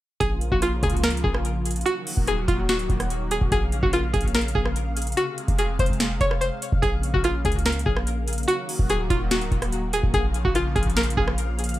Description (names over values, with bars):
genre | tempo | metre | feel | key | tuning
hip hop, trap | 145 BPM | 4/4 | half-time | Bb minor | A4 = 440 Hz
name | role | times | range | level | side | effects
string-like resonator pluck | melody | 0.2-11.8 s | F4 to Db5 | -25 LUFS | equal | chorus, low-pass filter, plate reverb, ping-pong delay
warm analog pad | sustained chords | 0.2-11.8 s | C3 to F5 | -31 LUFS | left 1 dB | chorus
warm 808-style bass | bass | 0.2-11.8 s | Db1 to Db2 | -26 LUFS | equal | none
booming analog drum machine | drums | 0.2-11.8 s | hi-hat, kick drum, rim click, snare drum | -25 LUFS | equal | overdrive
room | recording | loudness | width
light reverb | none | -21 LUFS | side -15 dB against mid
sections
0.2-11.8 A section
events
none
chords
0.2 Bbm; 1.9 Ebm; 3.5 Bbm; 5.2 Fm; 6.8 Bbm; 8.5 Ebm; 10.1 Bbm